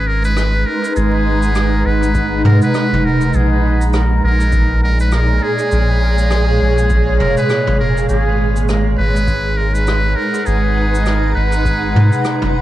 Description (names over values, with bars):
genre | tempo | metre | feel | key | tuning
ambient dub | 101 BPM | 4/4 | swing 59% on 16ths | G# dorian | A4 = 440 Hz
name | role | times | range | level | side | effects
trumpet with metal mute | melody | 0.0-12.5 s | G#4 to B4 | -20 LUFS | equal | cassette tape, analog delay
granular cloud pad | sustained chords | 0.0-12.6 s | A#2 to A#5 | -18 LUFS | right 1 dB | built-in reverb, cassette tape
concert harp | arpeggios | 0.0-1.0 s | C#4 | -38 LUFS | left 6 dB | none
soft dub sub bass | bass | 0.0-12.6 s | D#1 to G#2 | -15 LUFS | equal | none
jazz brush drum kit | drums | 0.2-12.5 s | cabasa, rim click, toms | -22 LUFS | equal | cassette tape, dub echo
electronic kick drum | drums | 2.2-11.8 s | none | -20 LUFS | equal | overdrive, cassette tape
room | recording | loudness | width
studio ambience | home recording on cassette, vinyl crackle | -12 LUFS | side -14 dB against mid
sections
0.0-12.6 A section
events
none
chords
0.0 G#m9; 3.3 A#m7; 8.1 G#m9